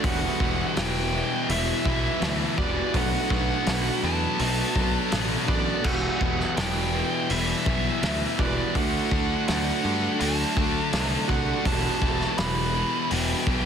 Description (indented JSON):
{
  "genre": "rock, shoegaze and dream pop",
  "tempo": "83 BPM",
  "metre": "4/4",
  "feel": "straight",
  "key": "E minor",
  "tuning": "A4 = 440 Hz",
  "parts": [
    { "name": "nasal lead guitar with a parked wah", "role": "melody", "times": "0.0-13.7 s", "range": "D5 to B5", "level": "-31 LUFS", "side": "right 1 dB", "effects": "overdrive, digital delay" },
    { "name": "deep dark ambient pad", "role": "sustained chords", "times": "0.0-13.7 s", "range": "D3 to A5", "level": "-38 LUFS", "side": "right 1 dB", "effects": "none" },
    { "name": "picked plugged-in twelve-string acoustic guitar", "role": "arpeggios", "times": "0.0-13.7 s", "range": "F#3 to A4", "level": "-37 LUFS", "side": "left 4 dB", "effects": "analog chorus, digital delay" },
    { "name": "electric guitar through a small old amp", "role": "riff", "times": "0.0-13.7 s", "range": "B2 to F#4", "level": "-33 LUFS", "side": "right 14 dB", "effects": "reverse reverb" },
    { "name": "thick fuzz guitar", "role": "riff", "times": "0.0-13.7 s", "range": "E2 to D4", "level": "-32 LUFS", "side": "left 12 dB", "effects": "distortion, analog chorus" },
    { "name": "tight distorted guitar", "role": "riff", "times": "0.0-13.7 s", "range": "E2 to D4", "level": "-29 LUFS", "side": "right 1 dB", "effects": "distortion" },
    { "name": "fuzz picked electric bass", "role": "bass", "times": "0.0-13.7 s", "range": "E1 to G2", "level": "-30 LUFS", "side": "equal", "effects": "overdrive" },
    { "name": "loose indie drum kit", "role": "drums", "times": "0.0-13.6 s", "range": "crash cymbal, hi-hat, kick drum, snare drum", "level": "-29 LUFS", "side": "equal", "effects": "none" }
  ],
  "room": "small room ambience",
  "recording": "dense, heavily limited modern master",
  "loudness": "-22 LUFS",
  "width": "side -7 dB against mid",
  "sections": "0.0-13.7 A section",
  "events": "none",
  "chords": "0.0 Emadd9; 2.9 Bm7; 5.9 Emadd9; 8.8 D; 11.7 Emadd9",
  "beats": "| 0.04 0.77 1.50 2.22 | 2.95 3.67 4.40 5.13 | 5.85 6.58 7.30 8.03 | 8.76 9.48 10.21 10.93 | 11.66 12.38 13.11"
}